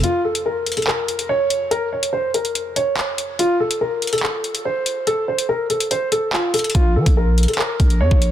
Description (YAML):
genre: hip hop, drill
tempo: 143 BPM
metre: 4/4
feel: half-time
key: unclear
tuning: A4 = 439 Hz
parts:
  - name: dark concert grand piano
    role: melody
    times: 0.0-8.3 s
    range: F4 to Db5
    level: -20 LUFS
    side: equal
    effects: low-pass filter, digital delay
  - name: growling 808-style bass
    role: bass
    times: 0.0, 6.7-8.3 s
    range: Bb1 to F3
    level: -16 LUFS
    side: equal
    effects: none
  - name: drill drum kit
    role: drums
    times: 0.0-8.3 s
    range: handclaps, hi-hat, kick drum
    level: -20 LUFS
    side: equal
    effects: none
room: digital ambience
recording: dense, heavily limited modern master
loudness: -17 LUFS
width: side -11 dB against mid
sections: 0.0-8.3 A section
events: break 0.0-6.7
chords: 0.0 N.C.; 6.7 Bb5